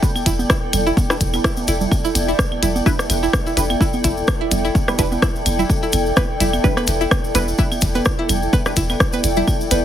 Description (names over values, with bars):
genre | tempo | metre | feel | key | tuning
minimal techno | 127 BPM | 4/4 | swing 55% on 16ths | E minor | A4 = 441 Hz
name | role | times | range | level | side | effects
electronic kick drum | drums | 0.0-9.6 s | none | -19 LUFS | equal | studio reverb
tube shaker | percussion | 0.0-9.8 s | none | -29 LUFS | left 1 dB | none
granular cloud pad | texture | 0.0-9.8 s | E4 to G5 | -23 LUFS | equal | built-in reverb, sidechain pumping
congas and claves | percussion | 0.2-9.8 s | none | -26 LUFS | right 3 dB | studio reverb, tape echo
string-like resonator pluck | riff | 0.3-9.8 s | E4 to B4 | -24 LUFS | right 1 dB | chorus, sidechain pumping, ping-pong delay
punchy sub bass | bass | 0.3-9.8 s | E1 | -22 LUFS | equal | tube saturation, sidechain pumping
minimal click drum kit | drums | 0.3-9.8 s | hi-hat, rim click | -20 LUFS | left 1 dB | studio reverb
filtered dub chord stab | stabs | 1.1-8.7 s | G3 to B4 | -26 LUFS | right 3 dB | phaser, tape echo
room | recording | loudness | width
moderate small room reverb, RT60 0.5 s | heavily compressed radio sound, multiband compression | -16 LUFS | side -10 dB against mid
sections
0.0-9.8 A section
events
none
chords
0.0 Em7